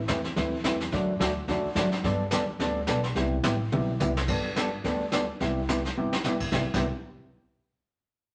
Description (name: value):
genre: country, western swing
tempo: 215 BPM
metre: 4/4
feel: swing 59% on 8ths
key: C major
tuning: A4 = 441 Hz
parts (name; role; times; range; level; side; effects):
- upright bass; bass; 0.0-6.9 s; G1 to G2; -34 LUFS; equal; none
- hollow-body jazz guitar; accompaniment; 0.1-6.9 s; C3 to B4; -31 LUFS; equal; none
- vintage brush drum kit; drums; 0.1-6.8 s; brushed snare drum, crash cymbal, hi-hat, kick drum, snare drum, toms; -33 LUFS; equal; none
room: wet studio reverb, RT60 0.9 s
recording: nothing above 10.5 kHz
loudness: -28 LUFS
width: mono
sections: 0.0-4.3 A section; 4.3-6.5 B section; 6.5-7.6 C section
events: drum fill 3.7-4.3, 6.0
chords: 0.0 Amadd9; 0.9 D; 2.0 Gadd9; 3.2 Cmaj7; 4.3 Gadd9; 5.4 Cmaj7